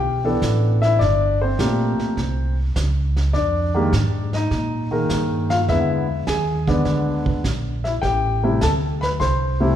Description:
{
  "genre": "jazz piano trio",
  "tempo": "102 BPM",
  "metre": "4/4",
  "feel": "swing 69% on 8ths",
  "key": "unclear",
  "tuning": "A4 = 442 Hz",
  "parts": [
    { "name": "warm baby grand piano", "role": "melody", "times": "0.0-9.8 s", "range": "C3 to C6", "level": "-20 LUFS", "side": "left 1 dB", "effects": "none" },
    { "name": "upright bass", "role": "bass", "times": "0.0-9.8 s", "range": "G1 to Bb2", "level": "-21 LUFS", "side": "right 1 dB", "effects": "none" },
    { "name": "vintage brush drum kit", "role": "drums", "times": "0.4-9.8 s", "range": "brushed snare drum, hi-hat, kick drum, snare drum", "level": "-29 LUFS", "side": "right 2 dB", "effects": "none" }
  ],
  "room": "wet recital hall reverb, RT60 1.7 s",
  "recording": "recorded in a church or concert hall",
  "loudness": "-18 LUFS",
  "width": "side -10 dB against mid",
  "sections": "0.0-9.8 A section",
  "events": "none",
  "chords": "0.0 Em7; 1.0 Gm9; 2.2 N.C.; 3.3 Fm11; 5.7 E7; 8.0 Am7"
}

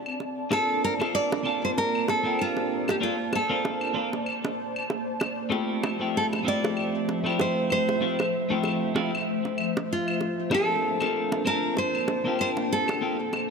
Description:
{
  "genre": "sunset chillout",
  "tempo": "96 BPM",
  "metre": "4/4",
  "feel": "swing 57% on 16ths",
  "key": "unclear",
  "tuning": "A4 = 435 Hz",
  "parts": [
    { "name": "nylon-string guitar", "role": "melody", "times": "0.0-13.5 s", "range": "F4 to D5", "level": "-27 LUFS", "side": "right 1 dB", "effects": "tape echo" },
    { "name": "ethereal airy pad", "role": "sustained chords", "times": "0.0-13.5 s", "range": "F3 to A5", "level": "-31 LUFS", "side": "equal", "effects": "ensemble chorus, built-in reverb, tremolo" },
    { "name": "claves", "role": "drums", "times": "0.1-13.5 s", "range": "none", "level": "-35 LUFS", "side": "left 2 dB", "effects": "none" },
    { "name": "bongos", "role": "percussion", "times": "0.2-13.5 s", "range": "none", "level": "-32 LUFS", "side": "right 2 dB", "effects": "none" },
    { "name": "twelve-string electric guitar", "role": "accompaniment", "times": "0.5-13.2 s", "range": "A3 to A5", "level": "-29 LUFS", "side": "equal", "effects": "auto-pan, tape echo" }
  ],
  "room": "moderate lush hall reverb, RT60 2.5 s",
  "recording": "none",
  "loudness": "-24 LUFS",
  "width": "side -5 dB against mid",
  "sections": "0.0-13.5 A section",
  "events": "filter sweep on ambient pad 0.0-13.5",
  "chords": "0.0 F; 0.5 Bbmaj9; 5.5 Fmaj7; 10.5 Bbmaj9"
}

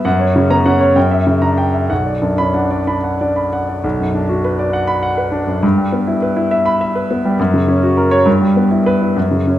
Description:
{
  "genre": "classical, virtuoso piano study",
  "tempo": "61-70 BPM (dotted quarters)",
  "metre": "6/8",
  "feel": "rubato",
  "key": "B minor",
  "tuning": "A4 = 440 Hz",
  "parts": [
    { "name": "warm concert grand piano", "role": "solo", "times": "0.0-9.6 s", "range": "B1 to B5", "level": "-13 LUFS", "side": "equal", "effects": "none" }
  ],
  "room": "wet recital hall reverb, RT60 1.4 s",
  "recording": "dark, warm production",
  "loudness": "-13 LUFS",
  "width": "side -13 dB against mid",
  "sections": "0.0-3.8 A section; 3.8-9.6 A section",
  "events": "none",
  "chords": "0.1 F#; 1.0 F#7b9; 1.9 Bm; 5.6 Em/G; 7.4 F#; 8.3 Em/G"
}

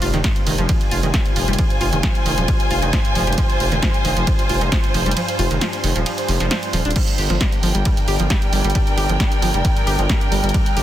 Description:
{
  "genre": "driving peak-time techno",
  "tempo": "134 BPM",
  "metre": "4/4",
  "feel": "straight",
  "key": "unclear",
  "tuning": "A4 = 441 Hz",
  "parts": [
    { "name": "analog pluck", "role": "riff", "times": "0.0-10.8 s", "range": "Eb3 to G4", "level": "-25 LUFS", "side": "right 1 dB", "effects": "chorus, tube saturation, sidechain pumping, digital delay" },
    { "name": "growling FM bass", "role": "bass", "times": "0.0-10.8 s", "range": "Eb1 to G1", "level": "-21 LUFS", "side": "equal", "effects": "sidechain pumping" },
    { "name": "overtone-sweeping drone", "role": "drone", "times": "0.0-10.8 s", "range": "G2", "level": "-28 LUFS", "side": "left 1 dB", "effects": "chorus, built-in reverb, sidechain pumping" },
    { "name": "punchy analog drum machine", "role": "drums", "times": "0.0-10.8 s", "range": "crash cymbal, hi-hat, ride cymbal, snare drum", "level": "-25 LUFS", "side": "right 2 dB", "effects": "sidechain pumping on hats, sidechain pumping on cymbals" },
    { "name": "muted studio string section", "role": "texture", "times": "0.0-10.8 s", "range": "D4 to Ab5", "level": "-24 LUFS", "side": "equal", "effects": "sidechain pumping" },
    { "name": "electronic kick drum", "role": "drums", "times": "0.2-10.6 s", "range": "none", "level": "-20 LUFS", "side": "equal", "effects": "none" }
  ],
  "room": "digital ambience",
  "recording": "dense, heavily limited modern master",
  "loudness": "-16 LUFS",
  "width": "side -12 dB against mid",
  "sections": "0.0-10.8 A section",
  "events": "kick drops out 5.2-7.0",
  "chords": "0.0 Fm; 7.0 Gm"
}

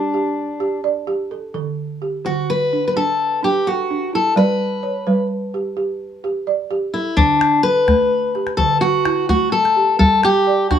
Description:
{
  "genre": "west african traditional, West African string and xylophone music",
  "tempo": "85 BPM (dotted quarters)",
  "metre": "12/8",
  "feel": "straight",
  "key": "D major",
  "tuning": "A4 = 440 Hz",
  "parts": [
    { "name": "fingerpicked steel-string acoustic guitar", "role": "melody", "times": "0.0-10.8 s", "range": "D4 to B4", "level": "-16 LUFS", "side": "left 2 dB", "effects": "none" },
    { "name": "balafon", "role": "arpeggios", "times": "0.0-10.8 s", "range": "D3 to D5", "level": "-21 LUFS", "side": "right 3 dB", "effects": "none" },
    { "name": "calabash", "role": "percussion", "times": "7.2-10.8 s", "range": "none", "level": "-20 LUFS", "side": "left 1 dB", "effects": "none" }
  ],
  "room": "light reverb",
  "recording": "small room ambience",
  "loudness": "-16 LUFS",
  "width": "side -9 dB against mid",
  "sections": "0.0-7.2 A section; 7.2-10.8 B section",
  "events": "none",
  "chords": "0.0 G5; 1.5 D; 4.4 G; 7.2 D; 10.0 G5"
}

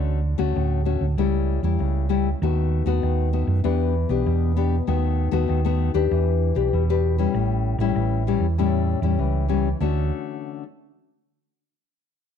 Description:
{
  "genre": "samba and choro",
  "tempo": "97 BPM",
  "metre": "4/4",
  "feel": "straight",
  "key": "D major",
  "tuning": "A4 = 440 Hz",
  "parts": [
    { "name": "nylon-string guitar", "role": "accompaniment", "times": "0.0-10.6 s", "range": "A2 to B4", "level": "-24 LUFS", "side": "left 12 dB", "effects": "none" },
    { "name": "hollow-body short-scale fingered electric bass", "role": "bass", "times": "0.0-10.1 s", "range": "A1 to F#2", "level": "-22 LUFS", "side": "right 2 dB", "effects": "none" }
  ],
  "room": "light reverb, studio reverb",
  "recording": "1960s-style stereo",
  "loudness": "-20 LUFS",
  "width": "side -8 dB against mid",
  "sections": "0.0-9.8 A section; 9.8-12.3 B section",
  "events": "none",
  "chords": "0.0 Dmaj7; 1.2 A7/C#; 2.4 B7/D#; 3.6 Em7; 4.9 B7/D#; 6.1 Em7; 7.3 A7; 9.8 Dmaj7"
}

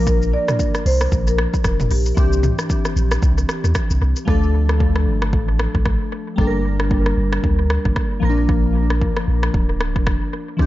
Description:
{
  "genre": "afrobeats",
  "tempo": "114 BPM",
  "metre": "4/4",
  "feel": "swing 58% on 16ths",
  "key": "unclear",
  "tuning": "A4 = 439 Hz",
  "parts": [
    { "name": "glassy digital keys", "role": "accompaniment", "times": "0.0-10.7 s", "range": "E3 to Bb4", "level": "-23 LUFS", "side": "left 1 dB", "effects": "chorus, analog delay" },
    { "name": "punchy sub bass", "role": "bass", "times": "0.0-10.7 s", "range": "D1 to E2", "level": "-18 LUFS", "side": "equal", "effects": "none" },
    { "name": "marimba with soft mallets", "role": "melody", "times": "0.1-2.7 s", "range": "G4 to D5", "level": "-24 LUFS", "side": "equal", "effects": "analog delay" },
    { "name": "deep house drum kit", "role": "drums", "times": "0.1-10.7 s", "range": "hi-hat, kick drum, rim click, shaker, toms", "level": "-20 LUFS", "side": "equal", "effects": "analog delay" }
  ],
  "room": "light reverb",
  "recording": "echo-heavy mix, nothing above 7.6 kHz",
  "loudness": "-16 LUFS",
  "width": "side -15 dB against mid",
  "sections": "0.0-4.3 A section; 4.3-10.7 B section",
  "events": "hi-hats muted 4.3-10.7",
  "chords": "0.0 Bb; 2.2 Cadd9; 4.3 Dm; 6.4 Gm; 8.2 Bb"
}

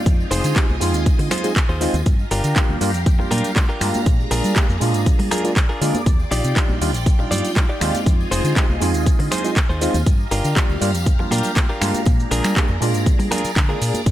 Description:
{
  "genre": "filtered disco house",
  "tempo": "120 BPM",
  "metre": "4/4",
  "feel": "straight",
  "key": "unclear",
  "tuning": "A4 = 440 Hz",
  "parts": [
    { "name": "overdriven reed electric piano", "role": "accompaniment", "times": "0.0-13.8 s", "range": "G3 to Ab4", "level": "-24 LUFS", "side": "right 1 dB", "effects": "phaser, vintage 12-bit sampler grit, sidechain pumping" },
    { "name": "phased string machine", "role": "sustained chords", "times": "0.0-14.1 s", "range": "F4 to Bb5", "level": "-29 LUFS", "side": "equal", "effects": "ensemble chorus, phaser, sidechain pumping" },
    { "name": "fingered electric bass", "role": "bass", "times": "0.1-14.1 s", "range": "F1 to G3", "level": "-22 LUFS", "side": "equal", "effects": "sidechain pumping" },
    { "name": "electronic kick drum", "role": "drums", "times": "0.1-14.1 s", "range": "none", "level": "-17 LUFS", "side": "equal", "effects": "none" },
    { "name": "house drum kit", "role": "drums", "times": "0.1-14.1 s", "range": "finger snaps, handclaps, hi-hat, shaker", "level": "-25 LUFS", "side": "right 1 dB", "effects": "sidechain pumping on hats, sidechain pumping on cymbals, sidechain pumping on perc" },
    { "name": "tambourine and congas", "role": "percussion", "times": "0.1-14.1 s", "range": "none", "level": "-32 LUFS", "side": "right 3 dB", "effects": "sidechain pumping on perc" },
    { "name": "direct-recorded clean electric guitar", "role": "riff", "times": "0.3-14.0 s", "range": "D4 to D5", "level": "-25 LUFS", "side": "left 1 dB", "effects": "sidechain pumping" }
  ],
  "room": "digital ambience",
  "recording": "none",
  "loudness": "-16 LUFS",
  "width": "side -13 dB against mid",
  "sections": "0.0-14.1 A section",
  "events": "none",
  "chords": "0.1 Fm7; 2.1 Gm7; 4.1 Bb7; 6.1 Ebmaj9; 8.1 Fm7; 10.1 Gm7; 12.1 Bb7"
}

